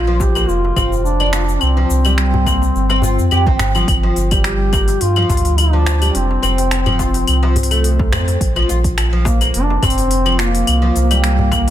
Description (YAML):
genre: organic downtempo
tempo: 106 BPM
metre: 4/4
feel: swing 54% on 16ths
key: unclear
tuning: A4 = 440 Hz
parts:
  - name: mellow duduk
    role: melody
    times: 0.0-11.7 s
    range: Bb3 to G4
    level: -20 LUFS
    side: left 1 dB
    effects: tape echo
  - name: warm sub bass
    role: bass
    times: 0.0-11.7 s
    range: F1 to G2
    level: -16 LUFS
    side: equal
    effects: sidechain pumping
  - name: oud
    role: arpeggios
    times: 0.1-11.7 s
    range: F3 to G4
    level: -22 LUFS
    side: equal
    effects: tape echo
  - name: afro-pop drum kit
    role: drums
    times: 0.2-11.7 s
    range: claves, finger snaps, hi-hat, shaker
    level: -20 LUFS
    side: left 3 dB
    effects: soft clipping on snare
  - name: electronic kick drum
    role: drums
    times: 0.2-11.6 s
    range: none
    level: -19 LUFS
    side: equal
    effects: none
  - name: darbuka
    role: percussion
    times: 0.2-11.7 s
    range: none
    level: -25 LUFS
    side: left 2 dB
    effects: none
room: light reverb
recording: dense, heavily limited modern master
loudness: -13 LUFS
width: side -11 dB against mid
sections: 0.0-11.7 A section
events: none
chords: 0.0 Bb; 1.6 Csus4; 3.9 G7(no3); 6.1 F; 8.4 Bbsus2; 10.7 C7sus4